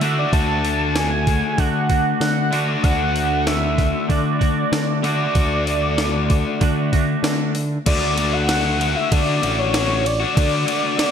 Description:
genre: indie rock.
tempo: 96 BPM.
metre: 4/4.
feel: straight.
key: unclear.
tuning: A4 = 440 Hz.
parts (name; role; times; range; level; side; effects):
octave-doubled lead; melody; 0.0-11.1 s; C#5 to A5; -23 LUFS; right 1 dB; chorus, slapback echo, analog delay.
biting overdriven guitar; riff; 0.0-11.1 s; A3 to F#4; -23 LUFS; left 8 dB; slapback echo.
twangy electric guitar; riff; 0.0-7.5 s; D3 to F#4; -27 LUFS; right 10 dB; analog chorus, slapback echo.
growling picked electric bass; bass; 0.0-10.6 s; A1 to D3; -23 LUFS; right 1 dB; overdrive.
breakbeat sampler-style drum kit; drums; 0.0-11.1 s; crash cymbal, hi-hat, kick drum, ride cymbal, snare drum; -22 LUFS; right 1 dB; none.
room: moderate recital hall reverb, RT60 1.6 s.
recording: big arena sound, faint mains hum.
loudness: -17 LUFS.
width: side -8 dB against mid.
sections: 0.0-7.9 A section; 7.9-11.1 B section.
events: none.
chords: 0.0 D.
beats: | 0.33 0.96 1.59 2.22 | 2.84 3.47 4.10 4.73 | 5.36 5.98 6.61 7.24 | 7.86 8.49 9.12 9.74 | 10.37 10.99.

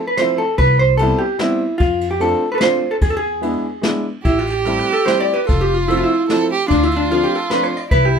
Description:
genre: musette waltz.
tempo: 148 BPM.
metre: 3/4.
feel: straight.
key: unclear.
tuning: A4 = 441 Hz.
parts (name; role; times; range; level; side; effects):
vintage hollow-body jazz guitar; melody; 0.0-8.2 s; D4 to D5; -17 LUFS; equal; none.
clear upright piano; accompaniment; 0.2-7.7 s; F3 to F4; -22 LUFS; left 1 dB; none.
jazz brush drum kit; drums; 0.2-8.0 s; kick drum, ride cymbal, snare drum; -22 LUFS; equal; none.
upright bass; bass; 0.6-8.2 s; F1 to F2; -20 LUFS; left 1 dB; none.
warm violin; second line; 4.2-8.2 s; E4 to A4; -21 LUFS; right 6 dB; none.
room: light reverb.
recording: minimal, uncompressed stereo recording.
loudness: -14 LUFS.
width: side -6 dB against mid.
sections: 0.0-8.2 A section.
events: none.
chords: 0.0 Fmaj7; 0.6 Cmaj7; 1.8 F6; 3.0 E7; 4.2 Am7; 5.5 Fmaj7; 6.7 Dm7.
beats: 0.17 | 0.58 0.99 1.40 | 1.80 2.20 2.60 | 3.01 3.42 3.83 | 4.24 4.66 5.07 | 5.48 5.89 6.29 | 6.69 7.09 7.50 | 7.90.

